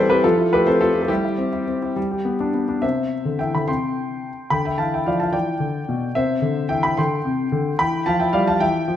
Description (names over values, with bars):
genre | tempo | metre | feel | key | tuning
classical-period piano sonatina | 72 BPM (dotted quarters) | 6/8 | straight | C major | A4 = 440 Hz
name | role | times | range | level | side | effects
warm concert grand piano | solo | 0.0-9.0 s | B2 to C6 | -18 LUFS | left 1 dB | none
room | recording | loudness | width
wet recital hall reverb, RT60 1.5 s | none | -18 LUFS | side -10 dB against mid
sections
0.0-2.8 A section; 2.8-9.0 B section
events
none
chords
0.2 Fmaj7; 1.1 C/G; 2.0 G; 2.8 C; 4.5 G7/D; 6.2 C; 7.8 G13/E